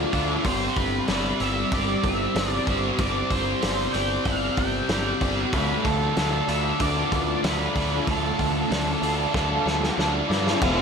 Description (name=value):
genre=rock, shoegaze and dream pop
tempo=94 BPM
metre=4/4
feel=straight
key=unclear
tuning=A4 = 437 Hz
part: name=overdriven electric guitar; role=riff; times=0.0-10.8 s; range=F2 to D5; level=-24 LUFS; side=equal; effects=lush chorus
part: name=growling picked electric bass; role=bass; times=0.0-10.8 s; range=F1 to G2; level=-29 LUFS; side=equal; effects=overdrive
part: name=loose indie drum kit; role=drums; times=0.1-10.8 s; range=crash cymbal, hi-hat, kick drum, snare drum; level=-29 LUFS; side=equal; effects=none
part: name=octave-fuzz lead guitar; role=melody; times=0.5-9.9 s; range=A4 to G5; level=-30 LUFS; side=right 2 dB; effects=distortion, diffuse ambient delay
room=moderate plate reverb, RT60 1.7 s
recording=dreamy mix soaked in reverb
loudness=-21 LUFS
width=side -6 dB against mid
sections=0.0-10.6 A section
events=drum fill 9.3-10.6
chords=0.5 Gsus4; 5.5 Dm